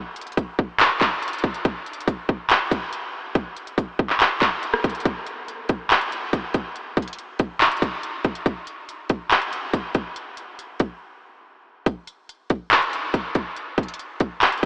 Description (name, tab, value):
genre	hip hop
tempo	141 BPM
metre	4/4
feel	half-time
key	none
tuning	none
part	trap drum kit	drums	0.2-14.7 s	handclaps, hi-hat, kick drum, rim click	-20 LUFS	equal	vintage 12-bit sampler grit
room	wet huge ambient reverb, RT60 6.3 s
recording	AM radio sound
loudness	-20 LUFS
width	side -26 dB against mid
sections	0.0-5.1 A section; 5.1-14.7 B section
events	break 11.0-11.9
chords	none